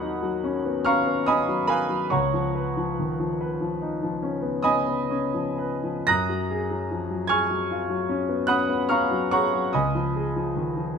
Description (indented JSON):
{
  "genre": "classical, impressionist solo piano",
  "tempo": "40-51 BPM (dotted quarters)",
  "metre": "9/8",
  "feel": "rubato",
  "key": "unclear",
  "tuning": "A4 = 440 Hz",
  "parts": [
    { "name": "clear concert grand piano", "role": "solo", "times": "0.0-11.0 s", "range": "Db2 to Bb6", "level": "-22 LUFS", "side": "equal", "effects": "none" }
  ],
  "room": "moderate recital hall reverb, RT60 1.5 s",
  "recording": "close, detailed microphones",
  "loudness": "-22 LUFS",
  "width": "side -6 dB against mid",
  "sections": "0.0-11.0 A section",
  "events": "none",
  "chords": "0.0 Ebm7; 2.1 Db9; 6.1 Gbmaj9; 9.7 Dbadd9"
}